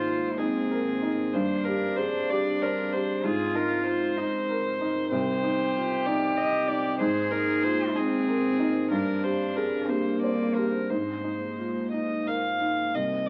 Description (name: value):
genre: neoclassical piano and strings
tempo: 63 BPM (dotted quarters)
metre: 6/8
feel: rubato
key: unclear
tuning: A4 = 440 Hz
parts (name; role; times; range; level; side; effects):
- warm violin; melody; 0.0-13.3 s; Ab4 to F5; -32 LUFS; equal; none
- warm cello; second line; 0.0-12.6 s; Ab3 to Ab4; -32 LUFS; equal; none
- felt-muted upright piano; accompaniment; 0.0-13.3 s; C2 to Eb5; -30 LUFS; equal; none
- warbly tape-like pad; sustained chords; 0.0-13.3 s; Eb3 to C5; -39 LUFS; equal; none
room: moderate studio reverb, RT60 0.7 s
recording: very old 78 rpm record, vinyl crackle, nothing above 7.6 kHz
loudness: -27 LUFS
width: mono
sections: 0.0-12.9 A section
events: none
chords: 0.0 Abadd9; 1.3 Gsus4; 3.2 Abadd9; 5.1 Cm; 7.0 Abadd9; 8.9 Gsus4; 10.9 Abadd9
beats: 0.39 | 1.34 2.29 | 3.24 4.18 | 5.12 6.07 | 7.01 7.95 | 8.91 9.88 | 10.89 11.92 | 12.94